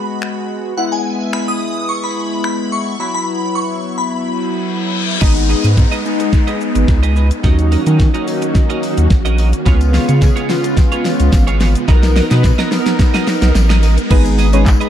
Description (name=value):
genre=dance-pop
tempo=108 BPM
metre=4/4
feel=straight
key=G# dorian from 5.2 s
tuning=A4 = 440 Hz
part: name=shimmering bell with halo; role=melody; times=0.0-4.9 s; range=F#5 to D#6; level=-22 LUFS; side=equal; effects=ensemble chorus, phaser
part: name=chorused polysynth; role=accompaniment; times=0.0-14.9 s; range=F#3 to B4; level=-19 LUFS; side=left 1 dB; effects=sidechain pumping
part: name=pop drum kit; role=drums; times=0.2-14.9 s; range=crash cymbal, finger snaps, handclaps, hi-hat, kick drum, shaker, snare drum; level=-14 LUFS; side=equal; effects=none
part: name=reverse cymbal, riser and downlifter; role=sound effects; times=4.4-14.1 s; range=none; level=-27 LUFS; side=left 2 dB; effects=none
part: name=string machine, violas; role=sustained chords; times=5.2-14.9 s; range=C#3 to A#4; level=-21 LUFS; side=equal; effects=ensemble chorus, sidechain pumping
part: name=twelve-string electric guitar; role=riff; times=5.2-14.9 s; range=B3 to D#5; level=-24 LUFS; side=right 8 dB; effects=analog chorus
part: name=saturated sub bass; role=bass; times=5.2-14.7 s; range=G#1 to D#3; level=-13 LUFS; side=equal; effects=sidechain pumping
part: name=tambourine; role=percussion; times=9.8-14.8 s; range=none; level=-36 LUFS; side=left 7 dB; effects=none
part: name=soft round pluck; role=melody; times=14.1-14.6 s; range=B3 to C#5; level=-21 LUFS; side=left 1 dB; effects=chorus, sidechain pumping
room=digital ambience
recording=dark, warm production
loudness=-12 LUFS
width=side -10 dB against mid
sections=0.0-5.2 A section; 5.2-14.1 B section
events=reverse cymbal 4.4-5.2; build-up 5.2-14.1; drum fill 5.2-14.1; riser 5.2-14.1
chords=0.0 G#m7; 0.8 E/G#; 3.0 F#7sus4; 5.2 G#m; 7.4 D#m7; 9.7 C#7; 11.9 Bmaj7; 14.1 G#m